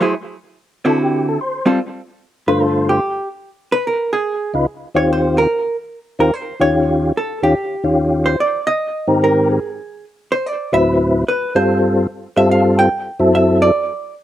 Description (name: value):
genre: jazz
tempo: 146 BPM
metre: 4/4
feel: swing 67% on 8ths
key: unclear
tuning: A4 = 440 Hz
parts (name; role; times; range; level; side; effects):
- percussive tonewheel organ; melody; 0.0-13.7 s; C#2 to C5; -14 LUFS; left 1 dB; slow rotary speaker, chorus vibrato
- vintage hollow-body jazz guitar; accompaniment; 0.0-14.1 s; D3 to G5; -18 LUFS; right 2 dB; slapback echo
room: little or no reverb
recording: recorded outdoors, with no room sound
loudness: -14 LUFS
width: side -12 dB against mid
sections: 0.0-1.8 A section; 1.8-14.2 A section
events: tonewheel organ solo 0.0-1.8; hollow-body jazz guitar solo 1.8-14.2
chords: 0.1 D9; 1.8 G9sus4; 3.4 C#7sus2; 5.1 Eb6; 6.7 Eb9; 8.4 Abmaj9; 10.0 Am (rootless); 10.9 D13; 11.7 G9sus4; 13.3 F#m7b5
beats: | 0.14 0.56 0.97 1.38 | 1.79 2.20 2.62 3.03 | 3.44 3.85 4.26 4.68 | 5.09 5.50 5.91 6.32 | 6.74 7.15 7.56 7.97 | 8.38 8.79 9.21 9.62 | 10.03 10.44 10.86 11.27 | 11.68 12.09 12.50 12.91 | 13.33 13.74